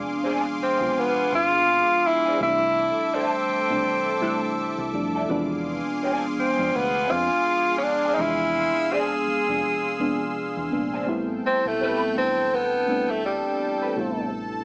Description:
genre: R&B, neo-soul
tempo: 83 BPM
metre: 4/4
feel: swing 58% on 16ths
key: A minor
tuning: A4 = 439 Hz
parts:
  - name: mellow FM electric piano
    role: accompaniment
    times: 0.0-14.6 s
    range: C3 to B4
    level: -28 LUFS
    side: equal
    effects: chorus
  - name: lush unison pad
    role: sustained chords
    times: 0.0-14.6 s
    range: G#4 to E6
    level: -30 LUFS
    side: equal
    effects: chorus
  - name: clean electric guitar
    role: second line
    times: 0.2-13.9 s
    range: C4 to B4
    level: -27 LUFS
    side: equal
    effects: wah, ensemble chorus
  - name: clear tenor saxophone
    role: melody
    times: 0.6-14.3 s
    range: G3 to G#4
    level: -22 LUFS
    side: equal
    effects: none
  - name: deep dub fingered electric bass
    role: bass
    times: 0.6-14.6 s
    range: G#1 to F2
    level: -35 LUFS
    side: equal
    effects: none
room: moderate studio reverb, RT60 0.6 s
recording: small speaker sound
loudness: -21 LUFS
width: side -39 dB against mid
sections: 0.0-11.1 A section; 11.1-14.6 B section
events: tenor saxophone solo 11.1-14.6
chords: 0.0 E7b9b13 (rootless); 2.4 C69; 5.3 E7b9b13; 11.1 Am9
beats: 0.23 0.95 1.67 | 2.40 3.12 3.84 4.56 | 5.29 6.01 6.73 7.46 | 8.18 8.90 9.62 10.35 | 11.07 11.79 12.52 13.24 | 13.96

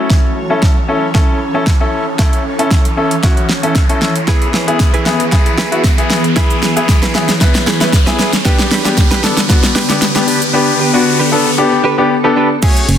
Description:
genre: dance-pop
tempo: 115 BPM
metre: 4/4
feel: straight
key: unclear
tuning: A4 = 439 Hz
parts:
  - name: clear baby grand piano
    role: accompaniment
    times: 0.0-12.9 s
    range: A3 to B4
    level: -16 LUFS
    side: left 3 dB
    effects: sidechain pumping
  - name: granular cloud pad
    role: sustained chords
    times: 0.0-12.6 s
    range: D3 to C#5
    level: -19 LUFS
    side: equal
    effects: built-in reverb, sidechain pumping
  - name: riser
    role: sound effects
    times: 0.0-11.6 s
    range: none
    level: -21 LUFS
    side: equal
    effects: none
  - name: pop drum kit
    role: drums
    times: 0.1-13.0 s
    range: crash cymbal, hi-hat, kick drum, shaker, snare drum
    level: -12 LUFS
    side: equal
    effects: none
  - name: direct-recorded clean electric guitar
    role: riff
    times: 4.3-13.0 s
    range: A3 to B4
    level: -19 LUFS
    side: right 5 dB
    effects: analog chorus
  - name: tambourine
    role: percussion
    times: 4.3-13.0 s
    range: none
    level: -32 LUFS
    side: left 9 dB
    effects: none
  - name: supersaw pad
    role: melody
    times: 12.6-12.7 s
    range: C#5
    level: -22 LUFS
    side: left 2 dB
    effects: none
  - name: chorused synth bass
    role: bass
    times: 12.9-13.0 s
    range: F#1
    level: -10 LUFS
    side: right 1 dB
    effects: sidechain pumping
room: light reverb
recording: dense, heavily limited modern master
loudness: -10 LUFS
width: side -9 dB against mid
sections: 0.0-12.6 A section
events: build-up 0.0-12.6; drum fill 0.0-10.5; riser 0.0-12.6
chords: 0.0 A; 4.3 E; 8.5 G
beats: | 0.10 0.63 1.15 1.67 | 2.19 2.71 3.23 3.76 | 4.28 4.80 5.32 5.84 | 6.37 6.89 7.41 7.93 | 8.45 8.97 9.49 10.02 | 10.54 11.06 11.58 12.10 | 12.63

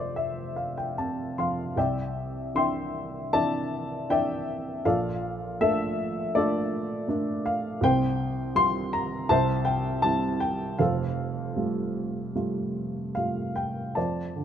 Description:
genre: classical, lyrical solo piano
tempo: 74-82 BPM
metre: 4/4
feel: rubato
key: F major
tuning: A4 = 439 Hz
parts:
  - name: dark upright piano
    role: solo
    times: 0.0-14.4 s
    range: F1 to C6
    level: -25 LUFS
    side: equal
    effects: none
room: light reverb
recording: close, detailed microphones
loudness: -25 LUFS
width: side -9 dB against mid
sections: 0.0-1.8 A section; 1.8-14.0 B section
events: upright piano fill 0.0-1.8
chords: 0.0 F; 1.8 Cadd9; 4.8 Bbmaj7; 7.8 Csus4; 9.3 C; 10.8 Fadd9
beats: 0.17 0.97 | 1.76 2.55 3.33 4.09 | 4.85 5.60 6.35 7.09 | 7.82 8.56 9.30 10.04 | 10.79 11.56 12.35 13.16 | 13.97

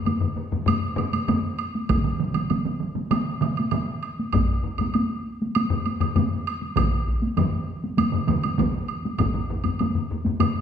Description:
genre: japanese traditional, taiko drum ensemble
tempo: 99 BPM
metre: 4/4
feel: straight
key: none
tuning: none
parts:
  - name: taiko ensemble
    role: percussion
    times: 0.1-10.5 s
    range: none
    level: -26 LUFS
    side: right 1 dB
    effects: none
  - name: taiko ensemble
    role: percussion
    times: 0.1-10.5 s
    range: none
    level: -26 LUFS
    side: left 5 dB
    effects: none
  - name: woodblock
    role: percussion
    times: 0.1-10.5 s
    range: none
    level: -31 LUFS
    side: right 5 dB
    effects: none
  - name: taiko ensemble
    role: percussion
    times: 1.9-8.7 s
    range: none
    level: -26 LUFS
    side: right 4 dB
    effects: none
  - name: taiko ensemble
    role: percussion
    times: 1.9-9.3 s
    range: none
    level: -27 LUFS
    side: equal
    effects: none
room: wet recital hall reverb, RT60 1.4 s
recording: recorded in a church or concert hall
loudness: -22 LUFS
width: side -8 dB against mid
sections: 0.0-10.6 A section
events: none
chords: none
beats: 0.05 0.67 1.28 | 1.89 2.50 3.11 3.72 | 4.33 4.94 5.55 6.16 | 6.76 7.37 7.98 8.58 | 9.19 9.79 10.39

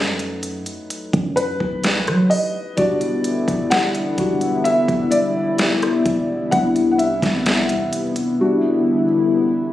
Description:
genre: contemporary R&B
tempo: 64 BPM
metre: 4/4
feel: straight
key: E minor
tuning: A4 = 440 Hz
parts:
  - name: felt-muted upright piano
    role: accompaniment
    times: 0.0-9.7 s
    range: F#3 to F#5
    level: -21 LUFS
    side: left 1 dB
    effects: none
  - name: warm 808-style bass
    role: bass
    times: 0.0-7.9 s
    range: E1 to F#3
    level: -24 LUFS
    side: right 1 dB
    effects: none
  - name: smooth R&B drum kit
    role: drums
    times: 0.2-8.4 s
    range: hi-hat, kick drum, rim click, snare drum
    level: -22 LUFS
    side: equal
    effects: none
  - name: chorused pulse-width pad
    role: sustained chords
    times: 2.8-9.7 s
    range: C3 to E4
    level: -20 LUFS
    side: left 2 dB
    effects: sidechain pumping
room: light reverb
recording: recorded on a phone in the room, studio reverb, compression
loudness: -16 LUFS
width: side -13 dB against mid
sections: 0.0-9.7 A section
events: felt piano solo 0.0-9.7; drums muted 8.4-9.7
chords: 0.0 B7; 2.8 Em7; 6.5 Cmaj7; 8.4 Em7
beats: 0.90 1.84 | 2.77 3.71 4.65 5.59 | 6.53 7.46 8.40 9.34

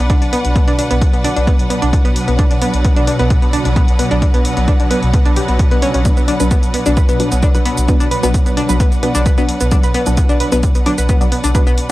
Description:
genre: driving peak-time techno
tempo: 131 BPM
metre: 4/4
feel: straight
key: B minor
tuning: A4 = 440 Hz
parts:
  - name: analog pluck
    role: riff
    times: 0.0-11.7 s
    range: B3 to B4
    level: -19 LUFS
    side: equal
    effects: chorus, sidechain pumping, analog delay
  - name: saturated sub bass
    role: bass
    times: 0.0-11.8 s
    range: B1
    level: -19 LUFS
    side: equal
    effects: overdrive, sidechain pumping, low-pass filter
  - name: swarming drone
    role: drone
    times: 0.0-11.9 s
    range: B2 to F#3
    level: -23 LUFS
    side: right 1 dB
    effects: built-in reverb, sidechain pumping
  - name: clear studio string section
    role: texture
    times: 0.0-11.9 s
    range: D4 to F#5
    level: -23 LUFS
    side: equal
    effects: sidechain pumping
  - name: electronic hi-hat and shaker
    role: drums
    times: 0.1-11.9 s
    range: none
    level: -26 LUFS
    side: equal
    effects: sidechain pumping on hats, sidechain pumping on cymbals, sidechain pumping on perc
  - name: electronic kick drum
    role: drums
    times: 0.1-11.6 s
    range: none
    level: -14 LUFS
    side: equal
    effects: none
  - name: filtered dub chord stab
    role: stabs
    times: 6.1-11.7 s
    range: F#3 to D4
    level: -21 LUFS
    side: left 1 dB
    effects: analog chorus, sidechain pumping, analog delay
room: little or no reverb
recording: dry, gritty hardware recording, cassette tape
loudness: -11 LUFS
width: side -17 dB against mid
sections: 0.0-11.9 A section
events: none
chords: 0.0 Bm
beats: 0.10 | 0.56 1.01 1.47 1.93 | 2.39 2.85 3.30 3.76 | 4.22 4.68 5.14 5.59 | 6.05 6.51 6.97 7.43 | 7.88 8.34 8.80 9.26 | 9.72 10.17 10.63 11.09 | 11.55

